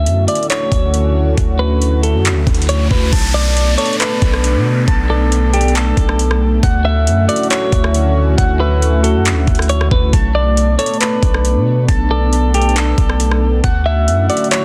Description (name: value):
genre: hip hop, atmospheric cloud-rap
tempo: 137 BPM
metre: 4/4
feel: half-time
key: B minor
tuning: A4 = 445 Hz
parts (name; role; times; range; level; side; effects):
- clean electric guitar; melody; 0.0-14.6 s; G4 to E5; -22 LUFS; equal; low-pass filter, delay
- dark analog pad; sustained chords; 0.0-14.6 s; D3 to F#4; -22 LUFS; equal; chorus, sidechain pumping
- long sustained 808-style bass; bass; 0.0-14.3 s; B1 to B2; -17 LUFS; equal; none
- smooth R&B drum kit; drums; 0.1-14.6 s; crash cymbal, handclaps, hi-hat, kick drum, rim click; -20 LUFS; equal; none
- riser and downlifter; sound effects; 2.1-6.6 s; none; -27 LUFS; equal; none
- soft electric-piano-like synth keys; arpeggios; 3.1-14.6 s; F#4 to A5; -26 LUFS; equal; chorus, low-pass filter, delay
room: digital ambience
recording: dense, heavily limited modern master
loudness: -14 LUFS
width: mono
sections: 0.0-3.1 A section; 3.1-14.6 B section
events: riser 2.1-3.1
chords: 0.0 Dmaj9; 3.1 Bm7; 6.6 Dmaj9; 10.1 Bm7; 13.6 Dmaj9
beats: 0.06 0.50 0.94 | 1.38 1.81 2.25 2.69 | 3.13 3.56 4.00 4.44 | 4.88 5.32 5.75 6.19 | 6.63 7.07 7.51 7.94 | 8.38 8.82 9.26 9.70 | 10.13 10.57 11.01 11.45 | 11.89 12.32 12.76 13.20 | 13.64 14.07 14.51